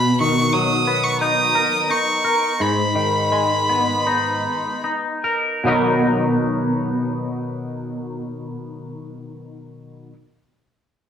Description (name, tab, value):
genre	rock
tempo	72-90 BPM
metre	4/4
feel	straight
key	B major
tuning	A4 = 439 Hz
part	bright violin	melody	0.0-4.9 s	B5 to D#6	-20 LUFS	right 1 dB	none
part	twangy electric guitar	arpeggios	0.0-10.2 s	G#2 to A#4	-20 LUFS	left 1 dB	phaser
room	wet large studio reverb, RT60 0.9 s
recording	band playing live in one room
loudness	-17 LUFS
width	side -8 dB against mid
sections	0.0-5.7 A section; 5.7-9.0 B section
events	slowing down 0.0-5.7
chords	0.0 Bmaj7; 2.6 G#madd9; 5.7 Bmaj7